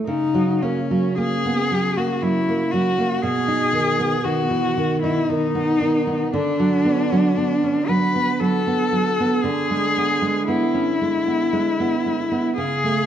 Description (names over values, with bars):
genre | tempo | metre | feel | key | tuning
romantic duo for cello and classical guitar | 58 BPM | 3/4 | rubato | unclear | A4 = 439 Hz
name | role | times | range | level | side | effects
nylon-string guitar | accompaniment | 0.0-13.1 s | B2 to D#4 | -21 LUFS | right 3 dB | none
dark cello | melody | 0.1-13.1 s | C#4 to B4 | -21 LUFS | left 3 dB | none
room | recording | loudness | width
wet recital hall reverb, RT60 1.8 s | dark, warm production | -18 LUFS | side -10 dB against mid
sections
0.0-13.1 A section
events
none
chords
0.1 F#/C#; 3.2 B; 6.3 Bm/D; 9.4 E7/D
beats
| 0.07 1.18 2.22 | 3.22 4.25 5.29 | 6.34 7.37 8.41 | 9.45 10.48 11.53 | 12.57